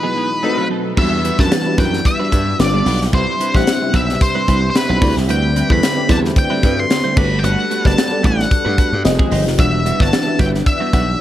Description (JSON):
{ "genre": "polished 1980s jazz-funk pop", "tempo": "112 BPM", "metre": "4/4", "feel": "swing 54% on 16ths", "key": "unclear", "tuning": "A4 = 439 Hz", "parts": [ { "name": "octave-fuzz lead guitar", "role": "melody", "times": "0.0-11.2 s", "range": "B4 to C6", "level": "-20 LUFS", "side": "left 1 dB", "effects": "distortion" }, { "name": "FM electric piano with soft pad layer", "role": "accompaniment", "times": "0.0-11.2 s", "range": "F#3 to E5", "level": "-23 LUFS", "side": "left 3 dB", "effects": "lush chorus" }, { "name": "lush unison pad", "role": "sustained chords", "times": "0.0-11.2 s", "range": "B2 to F#5", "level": "-25 LUFS", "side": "left 1 dB", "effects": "chorus" }, { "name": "clean electric guitar", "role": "riff", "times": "0.0-11.1 s", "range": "Eb3 to D5", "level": "-23 LUFS", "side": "right 6 dB", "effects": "analog chorus" }, { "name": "warm horn section", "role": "second line", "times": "0.4-0.7 s", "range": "F#3 to A4", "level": "-30 LUFS", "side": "left 3 dB", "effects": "tape echo" }, { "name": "glassy slap bass", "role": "bass", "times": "1.0-11.1 s", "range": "E1 to G2", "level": "-18 LUFS", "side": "equal", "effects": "none" }, { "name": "tight funk drum kit", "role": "drums", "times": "1.0-11.1 s", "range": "crash cymbal, hi-hat, kick drum, snare drum", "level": "-17 LUFS", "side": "equal", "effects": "gated reverb" } ], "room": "small room ambience", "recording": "none", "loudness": "-13 LUFS", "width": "side -12 dB against mid", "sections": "1.0-11.2 A section", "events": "break 0.0-1.0; band accent 0.0-1.0", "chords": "0.4 B7b9; 1.0 Em9; 2.6 G7; 3.1 Cmaj7; 5.0 D13sus4; 7.2 Gmaj9; 9.1 Fm9; 9.6 Em9", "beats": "0.44 | 0.97 1.51 2.05 2.59 | 3.13 3.67 4.21 4.75 | 5.28 5.82 6.36 6.90 | 7.44 7.97 8.51 9.05 | 9.59 10.12 10.66 11.20" }